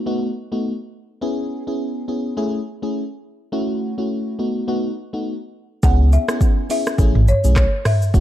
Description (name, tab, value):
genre	afrobeats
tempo	104 BPM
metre	4/4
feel	swing 58% on 16ths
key	C# minor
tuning	A4 = 440 Hz
part	FM electric piano with soft pad layer	accompaniment	0.0-8.2 s	A3 to G#4	-23 LUFS	equal	chorus
part	folk marimba with medium mallets	melody	5.8-8.2 s	C#5 to F#5	-24 LUFS	left 2 dB	digital delay
part	saturated sub bass	bass	5.8-8.2 s	F#1 to C#2	-15 LUFS	equal	none
part	afro-pop drum kit	drums	5.8-8.2 s	handclaps, hi-hat, kick drum, rim click, shaker, toms	-17 LUFS	equal	overdrive
room	little or no reverb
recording	dark, warm production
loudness	-18 LUFS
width	side -12 dB against mid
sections	0.0-5.8 A section; 5.8-8.2 B section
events	none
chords	0.0 B7; 1.2 C#m7; 2.4 Amaj7; 3.5 F#m7; 4.4 B7; 5.8 C#m7; 7.0 Amaj7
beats	0.06 0.64 | 1.22 1.79 2.37 2.95 | 3.52 4.10 4.68 5.26 | 5.83 6.41 6.99 7.56 | 8.14